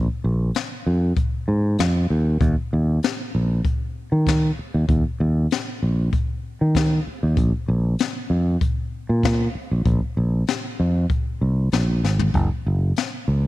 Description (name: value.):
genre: straight-eighth soul blues.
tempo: 97 BPM.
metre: 4/4.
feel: straight.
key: Bb minor.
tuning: A4 = 441 Hz.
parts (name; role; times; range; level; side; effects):
fingered electric bass; bass; 0.0-13.5 s; Gb1 to Eb3; -19 LUFS; equal; none.
jazz brush drum kit; drums; 0.5-13.1 s; hi-hat, kick drum, snare drum, toms; -24 LUFS; left 2 dB; none.
room: little or no reverb.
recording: 1960s-style stereo.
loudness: -19 LUFS.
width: side -17 dB against mid.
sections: 0.0-13.5 A section.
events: drum fill 12.0-12.3.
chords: none.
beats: 0.55 1.17 1.79 | 2.41 3.04 3.66 4.28 | 4.90 5.52 6.14 6.76 | 7.38 8.00 8.62 9.24 | 9.86 10.48 11.10 11.72 | 12.34 12.96.